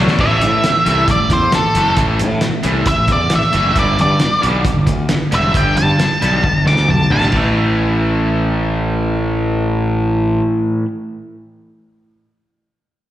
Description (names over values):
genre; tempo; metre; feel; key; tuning
classic rock; 134 BPM; 4/4; straight; unclear; A4 = 442 Hz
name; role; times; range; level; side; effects
overdriven semi-hollow guitar; riff; 0.0-10.9 s; G2 to D4; -18 LUFS; equal; slapback echo
fuzz fingered electric bass; bass; 0.0-10.4 s; E1 to A2; -18 LUFS; equal; overdrive
cloth-damped thuddy drum kit; drums; 0.1-7.4 s; crash cymbal, hi-hat, kick drum, snare drum, toms; -19 LUFS; equal; none
octave-fuzz lead guitar; melody; 0.2-7.3 s; A4 to D6; -16 LUFS; equal; distortion, slapback echo, tape echo
room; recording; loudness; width
light reverb; live gig heard through the venue's PA, recital hall reverb; -13 LUFS; side -13 dB against mid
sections
0.2-7.3 A section; 7.3-10.9 B section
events
drum fill 0.0, 6.4-7.3; lead electric guitar solo 0.2-7.3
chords
0.2 A5; 3.8 G; 7.3 A5